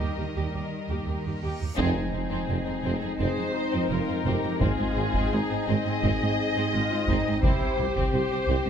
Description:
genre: cinematic, epic orchestral film score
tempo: 85 BPM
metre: 4/4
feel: straight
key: F minor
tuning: A4 = 440 Hz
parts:
  - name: rich symphonic violin section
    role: melody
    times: 0.0-8.7 s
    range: Ab4 to Eb5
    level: -32 LUFS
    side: left 4 dB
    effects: none
  - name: rich symphonic violin section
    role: second line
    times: 0.0-8.7 s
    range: C4 to Bb4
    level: -35 LUFS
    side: left 3 dB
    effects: none
  - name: warm symphonic viola section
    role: accompaniment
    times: 0.0-8.7 s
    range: C4 to Ab4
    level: -35 LUFS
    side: right 1 dB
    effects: none
  - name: dark French horn section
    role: sustained chords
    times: 0.0-8.7 s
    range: G3 to G4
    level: -35 LUFS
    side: left 2 dB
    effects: none
  - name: rich symphonic cello section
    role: bass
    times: 0.0-8.7 s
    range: C2 to Eb3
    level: -32 LUFS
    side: right 3 dB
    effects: none
  - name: warm symphonic double bass section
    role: bass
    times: 0.0-8.5 s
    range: F1 to Eb2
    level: -32 LUFS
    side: right 4 dB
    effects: none
  - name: reverse cymbal and impact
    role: sound effects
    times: 1.5-4.6 s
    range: none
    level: -40 LUFS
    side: equal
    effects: none
  - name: pipe organ, stopped flute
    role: sustained chords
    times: 1.8-8.7 s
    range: Ab3 to G5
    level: -33 LUFS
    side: left 3 dB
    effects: none
  - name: warm tuba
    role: bass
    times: 1.8-8.6 s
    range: F1 to C2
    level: -34 LUFS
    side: right 5 dB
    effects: none
  - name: taiko ensemble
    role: drums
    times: 1.8-8.6 s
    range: none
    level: -28 LUFS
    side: equal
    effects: none
room: moderate scoring stage reverb, RT60 1.5 s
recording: none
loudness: -24 LUFS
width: side -8 dB against mid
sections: 0.0-1.8 A section; 1.8-8.7 A section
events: reverse cymbal 1.5-1.8; band accent 1.8-2.5; impact 1.8-4.6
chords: 0.0 Eb; 1.8 Fm7; 4.6 Ab; 7.4 C

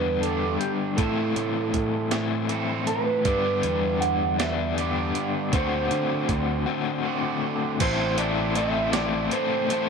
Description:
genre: indie rock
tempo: 53 BPM (dotted quarters)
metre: 6/8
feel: straight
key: A dorian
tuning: A4 = 441 Hz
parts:
  - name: electric guitar through a small old amp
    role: melody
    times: 0.0-9.9 s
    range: G4 to F#5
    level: -28 LUFS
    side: right 3 dB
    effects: slapback echo
  - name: overdriven electric guitar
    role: riff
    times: 0.0-9.9 s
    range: G2 to A4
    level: -27 LUFS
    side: left 10 dB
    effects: tremolo
  - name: overdriven semi-hollow guitar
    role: riff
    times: 0.0-9.9 s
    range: G2 to A4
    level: -30 LUFS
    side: right 12 dB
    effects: lush chorus, slapback echo
  - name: picked electric bass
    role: bass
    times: 0.0-9.3 s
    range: A1 to D3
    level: -30 LUFS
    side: right 1 dB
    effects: none
  - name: boom bap sampler-style drum kit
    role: drums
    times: 0.2-9.9 s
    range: crash cymbal, hi-hat, kick drum, snare drum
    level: -29 LUFS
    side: right 4 dB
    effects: none
room: moderate spring reverb, RT60 2.4 s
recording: 1960s-style stereo with parts hard left and right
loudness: -22 LUFS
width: side -6 dB against mid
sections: 0.0-7.8 A section; 7.8-9.9 B section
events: break 6.7-7.8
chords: 0.0 G; 1.0 Am; 3.3 G; 5.5 D7; 7.8 Am

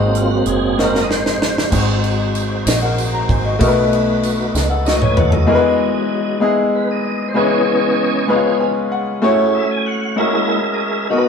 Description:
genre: slow gospel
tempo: 64 BPM (dotted quarters)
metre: 6/8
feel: straight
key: E major from 5.5 s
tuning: A4 = 438 Hz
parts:
  - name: bright grand piano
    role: accompaniment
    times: 0.0-11.3 s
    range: Ab2 to Bb5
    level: -16 LUFS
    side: left 2 dB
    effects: none
  - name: tonewheel organ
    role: sustained chords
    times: 0.0-11.3 s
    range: E3 to Ab5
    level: -20 LUFS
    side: right 2 dB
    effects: slow rotary speaker, chorus vibrato
  - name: deep dub fingered electric bass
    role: bass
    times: 0.0-5.5 s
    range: Gb1 to Eb2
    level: -20 LUFS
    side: equal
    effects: none
  - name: tight funk drum kit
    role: drums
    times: 0.1-5.5 s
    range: crash cymbal, hi-hat, kick drum, ride cymbal, snare drum, toms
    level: -20 LUFS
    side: right 1 dB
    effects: none
  - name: tambourine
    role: percussion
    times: 1.7-5.2 s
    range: none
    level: -31 LUFS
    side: right 5 dB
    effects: none
room: wet stone room reverb, RT60 1.3 s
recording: band playing live in one room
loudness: -14 LUFS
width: side -6 dB against mid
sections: 0.0-1.7 A section; 1.7-5.5 B section; 5.5-11.3 C section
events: tonewheel organ solo 0.0-1.7, 5.5-11.3; drum fill 0.8-1.7, 4.5-5.5; grand piano fill 8.3-9.2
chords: 0.0 Ab7; 3.6 Cb7; 5.5 Emaj7; 7.4 C#m7; 8.3 C#7; 9.2 F#m7; 10.2 F#9

